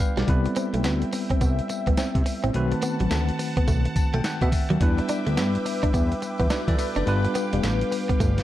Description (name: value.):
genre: R&B, new jack swing.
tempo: 106 BPM.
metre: 4/4.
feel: swing 62% on 16ths.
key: E minor.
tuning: A4 = 443 Hz.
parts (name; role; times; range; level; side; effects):
bell-like tine electric piano; accompaniment; 0.0-8.4 s; D#3 to A5; -28 LUFS; left 1 dB; fast stereo tremolo.
direct-recorded clean electric guitar; riff; 0.0-8.4 s; F#3 to D4; -30 LUFS; right 3 dB; wide subtle chorus.
dusty soul sampler-style drum kit; drums; 0.0-8.4 s; hi-hat, kick drum, snare drum, tambourine; -25 LUFS; equal; none.
fat analog bass; bass; 0.2-8.4 s; F1 to E3; -24 LUFS; equal; none.
phased analog pad; sustained chords; 0.3-8.4 s; B4 to D6; -33 LUFS; left 2 dB; phaser, chorus.
room: light reverb, digital ambience.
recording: dark, warm production.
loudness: -21 LUFS.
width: side -14 dB against mid.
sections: 0.0-8.4 A section.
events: tine electric piano fill 3.7-4.8.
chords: 0.3 Cmaj7; 2.5 B7b9; 4.8 Em7; 7.1 G7.